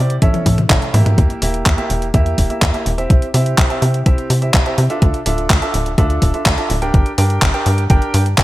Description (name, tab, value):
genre	italo disco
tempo	125 BPM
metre	4/4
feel	straight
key	unclear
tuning	A4 = 440 Hz
part	warm grand piano	stabs	0.0-8.4 s	Bb3 to G5	-21 LUFS	right 2 dB	digital delay
part	tight sequencer bass	bass	0.0-8.4 s	D1 to C3	-17 LUFS	equal	none
part	clean 12-bit digital drum machine	drums	0.1-8.4 s	handclaps, hi-hat, toms	-19 LUFS	equal	overdrive, high-pass filter on hats, high-pass filter on snare, high-pass filter on toms, high-pass filter on room, gated reverb
part	electronic kick drum	drums	0.2-8.4 s	none	-14 LUFS	equal	overdrive
room	light reverb, digital ambience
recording	none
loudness	-13 LUFS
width	side -17 dB against mid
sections	0.0-1.2 A section; 1.2-8.4 B section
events	drum fill 0.2-1.2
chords	0.2 A; 1.2 Edim; 3.1 C; 5.0 Dmadd9; 6.9 Gm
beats	0.22 0.70 | 1.18 1.66 2.14 2.62 | 3.10 3.58 4.06 4.54 | 5.02 5.50 5.98 6.46 | 6.94 7.42 7.90 8.38